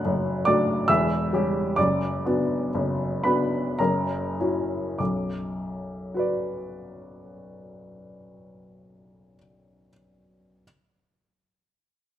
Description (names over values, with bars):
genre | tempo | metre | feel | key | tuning
classical, romantic character piece for solo piano | 47-73 BPM | 3/4 | rubato | B minor | A4 = 440 Hz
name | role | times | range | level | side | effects
warm upright piano | solo | 0.0-10.7 s | E1 to F#6 | -23 LUFS | equal | none
room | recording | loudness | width
moderate recital hall reverb, RT60 1.4 s | close, detailed microphones | -22 LUFS | side -11 dB against mid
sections
0.0-5.0 A section; 5.0-8.4 B section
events
slowing down 0.0-5.0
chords
0.0 D/F#; 0.9 C#dim/E; 1.8 Bm/F#; 3.8 F#7; 5.0 Bm